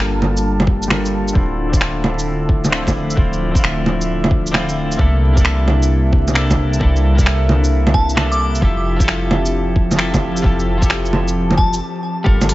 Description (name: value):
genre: future garage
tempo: 132 BPM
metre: 4/4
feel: swing 67% on 16ths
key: unclear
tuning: A4 = 443 Hz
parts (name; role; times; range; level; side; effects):
- twelve-string electric guitar; accompaniment; 0.0-12.5 s; C3 to Bb4; -21 LUFS; left 1 dB; sidechain pumping, low-pass filter, tape echo
- airy breathy pad; sustained chords; 0.0-12.5 s; C3 to A5; -23 LUFS; equal; chorus, sidechain pumping
- soft 808-style bass; bass; 0.0-12.5 s; D1 to C2; -18 LUFS; equal; sidechain pumping
- organic electronic drum kit; drums; 0.2-12.5 s; bongos, finger snaps, hi-hat, shaker; -19 LUFS; right 1 dB; studio reverb
- electronic kick drum; drums; 0.7-12.4 s; none; -16 LUFS; equal; overdrive, studio reverb
- glassy synth bell; melody; 7.9-8.5, 11.6-11.8 s; A5 to D6; -23 LUFS; equal; chorus, vintage 12-bit sampler grit, digital delay
room: light reverb, digital ambience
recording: vinyl crackle, nothing above 7.9 kHz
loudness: -14 LUFS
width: side -17 dB against mid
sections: 0.0-12.3 A section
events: filter sweep on clean electric guitar 0.0-12.3; break 11.8-12.3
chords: 0.0 Gm9; 1.4 Dm9; 5.0 C13; 8.6 Fmaj9